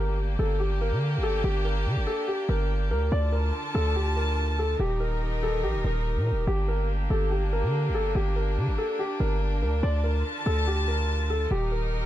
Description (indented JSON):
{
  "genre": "hip hop, drill",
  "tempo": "143 BPM",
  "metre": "4/4",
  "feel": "half-time",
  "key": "G minor",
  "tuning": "A4 = 437 Hz",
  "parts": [
    { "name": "dark concert grand piano", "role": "melody", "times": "0.0-11.9 s", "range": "G4 to D5", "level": "-30 LUFS", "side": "left 1 dB", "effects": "low-pass filter, ping-pong delay" },
    { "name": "warm chamber string section", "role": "sustained chords", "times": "0.0-12.1 s", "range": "D3 to A5", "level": "-33 LUFS", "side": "left 1 dB", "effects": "none" },
    { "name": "hard-hitting 808-style bass", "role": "bass", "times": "0.0-12.1 s", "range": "Eb1 to D3", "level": "-26 LUFS", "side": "equal", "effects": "none" }
  ],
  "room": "little or no reverb",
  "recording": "none",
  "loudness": "-24 LUFS",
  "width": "side -13 dB against mid",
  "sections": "0.0-12.1 A section",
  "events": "none",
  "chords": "0.0 Gm; 3.1 Dm; 4.8 Eb; 6.5 Gm; 9.8 Dm; 11.5 Eb"
}